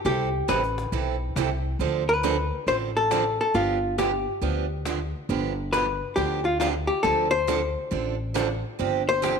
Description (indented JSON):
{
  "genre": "country, western swing",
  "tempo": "137 BPM",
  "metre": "4/4",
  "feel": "swing 65% on 8ths",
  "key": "unclear",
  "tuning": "A4 = 440 Hz",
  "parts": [
    { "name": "picked steel-string acoustic guitar", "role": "accompaniment", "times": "0.0-9.4 s", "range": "C3 to A4", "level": "-28 LUFS", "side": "right 11 dB", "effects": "none" },
    { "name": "upright bass", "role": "bass", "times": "0.0-9.4 s", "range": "G1 to D2", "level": "-30 LUFS", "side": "left 1 dB", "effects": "none" },
    { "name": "archtop guitar, miked and amplified", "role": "melody", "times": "0.1-9.4 s", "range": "F4 to C5", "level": "-24 LUFS", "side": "left 2 dB", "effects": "none" },
    { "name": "cajon", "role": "drums", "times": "0.5-9.4 s", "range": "none", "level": "-36 LUFS", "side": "left 7 dB", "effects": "none" }
  ],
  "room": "moderate echo chamber reverb, RT60 1.8 s, studio reverb",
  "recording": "1960s-style stereo with parts hard left and right",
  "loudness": "-23 LUFS",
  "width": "side -6 dB against mid",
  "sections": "0.0-9.4 A section",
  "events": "none",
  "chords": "0.1 Am9; 1.8 Dm7; 3.5 G7; 7.0 Dm7; 8.8 G7sus4",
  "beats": "| 0.05 0.49 0.93 1.36 | 1.80 2.23 2.67 3.11 | 3.55 3.98 4.42 4.86 | 5.29 5.73 6.17 6.61 | 7.04 7.48 7.92 8.36 | 8.79 9.23"
}